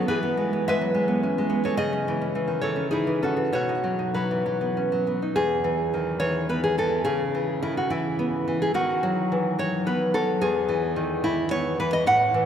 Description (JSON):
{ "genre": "romantic piece for solo classical guitar", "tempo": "95-112 BPM", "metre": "3/4", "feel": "rubato", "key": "E major", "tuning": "A4 = 440 Hz", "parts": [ { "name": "nylon-string guitar", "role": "solo", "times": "0.0-12.5 s", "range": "E2 to F#5", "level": "-22 LUFS", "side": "equal", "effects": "none" } ], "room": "wet cathedral reverb, RT60 5.1 s", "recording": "recorded in a church or concert hall", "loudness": "-22 LUFS", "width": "side -8 dB against mid", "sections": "0.0-5.4 A section; 5.4-12.5 B section", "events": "none", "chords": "0.1 E; 1.8 C#m; 3.5 B; 5.4 E; 7.1 C#m7; 8.7 B/D#; 10.4 E", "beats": "| 0.08 0.67 1.23 | 1.77 2.33 2.92 | 3.53 4.16 4.78 | 5.38 5.95 6.51 | 7.07 7.63 8.18 | 8.74 9.30 9.86 | 10.41 10.96 11.52 | 12.06" }